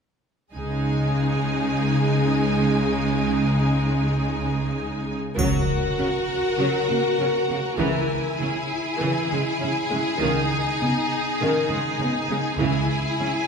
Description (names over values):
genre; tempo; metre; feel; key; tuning
cinematic, epic orchestral film score; 100 BPM; 4/4; straight; C# dorian; A4 = 440 Hz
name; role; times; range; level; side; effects
rich studio violin section; second line; 0.5-13.5 s; G#4 to G#5; -27 LUFS; left 3 dB; none
clear symphonic cello section; bass; 0.5-13.3 s; C#3; -26 LUFS; right 1 dB; none
rich symphonic viola section; accompaniment; 0.6-13.5 s; D#3 to F#4; -26 LUFS; right 1 dB; none
bright symphonic double bass section; bass; 0.6-12.9 s; C#2; -26 LUFS; right 1 dB; none
triangle; percussion; 5.4-6.6 s; none; -34 LUFS; left 3 dB; none
impact; sound effects; 5.4-7.8 s; none; -32 LUFS; left 1 dB; none
room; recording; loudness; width
wet concert hall reverb, RT60 2.0 s; recorded in a church or concert hall; -20 LUFS; side -6 dB against mid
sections
0.5-5.4 A section; 5.4-13.5 B section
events
build-up 5.4-13.5; impact 5.4-7.8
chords
0.5 C#sus2; 5.4 F#/C#; 7.8 C#m; 10.2 G#5/C#; 12.6 C#m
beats
| 0.55 1.16 1.76 2.35 | 2.96 3.56 4.17 4.77 | 5.39 5.99 6.60 7.20 | 7.80 8.41 9.01 9.61 | 10.21 10.81 11.41 12.01 | 12.61 13.21